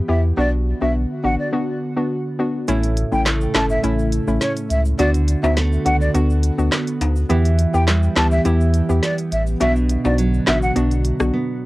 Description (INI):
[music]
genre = dancehall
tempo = 104 BPM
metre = 4/4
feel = straight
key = unclear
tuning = A4 = 441 Hz
[part]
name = airy breathy pad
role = sustained chords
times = 0.0-11.7 s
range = C#3 to G4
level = -28 LUFS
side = equal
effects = chorus
[part]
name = breathy mellow jazz flute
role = melody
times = 0.1-10.7 s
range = C#5 to A5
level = -23 LUFS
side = equal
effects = ping-pong delay
[part]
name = hollow square pluck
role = accompaniment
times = 0.1-11.3 s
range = A3 to G4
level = -23 LUFS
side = left 1 dB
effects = chorus
[part]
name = warm sub bass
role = bass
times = 0.1-11.3 s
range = G1 to E2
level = -19 LUFS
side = equal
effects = none
[part]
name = nylon-string guitar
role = arpeggios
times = 2.7-11.7 s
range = A2 to F#4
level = -24 LUFS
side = right 3 dB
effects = none
[part]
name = island pop drum kit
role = drums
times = 2.7-11.3 s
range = handclaps, hi-hat, rim click, snare drum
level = -22 LUFS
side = equal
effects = none
[part]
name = egg shaker and timbales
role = percussion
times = 2.7-11.3 s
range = none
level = -32 LUFS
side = left 4 dB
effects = none
[sound]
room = little or no reverb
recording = worn, warbling old tape, cassette tape, warbly pitch drift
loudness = -16 LUFS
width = side -18 dB against mid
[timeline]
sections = 0.0-2.7 A section; 2.7-11.7 B section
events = break 1.5-2.7, 11.3-11.7; kick muted 2.7-11.7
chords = 0.4 Bm; 2.7 A; 5.0 D6; 7.3 Em; 9.6 Bm